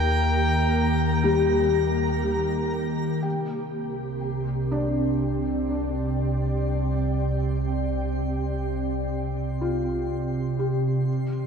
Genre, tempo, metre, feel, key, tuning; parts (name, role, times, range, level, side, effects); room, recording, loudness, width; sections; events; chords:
ambient; 61 BPM; 4/4; straight; C minor; A4 = 442 Hz
bright clarinet; melody; 0.0-2.2 s; G5; -29 LUFS; left 1 dB; diffuse ambient delay
ethereal airy pad; sustained chords; 0.0-11.5 s; C3 to Bb5; -25 LUFS; right 1 dB; ensemble chorus, built-in reverb
felt-muted upright piano; arpeggios; 0.0-11.5 s; G3 to G5; -28 LUFS; left 3 dB; diffuse ambient delay
round analog bass; bass; 0.0-11.5 s; C2 to Eb2; -29 LUFS; equal
twinkling granular texture; texture; 0.0-11.5 s; Bb5 to C6; -40 LUFS; right 2 dB; built-in reverb
overtone-sweeping drone; drone; 7.7-11.5 s; barely audible
wet concert hall reverb, RT60 2.1 s; dark, warm production; -23 LUFS; side -6 dB against mid
0.0-3.3 A section; 3.3-11.5 B section
fade-in on synth texture 3.3-11.5
0.0 Eb; 3.3 Csus2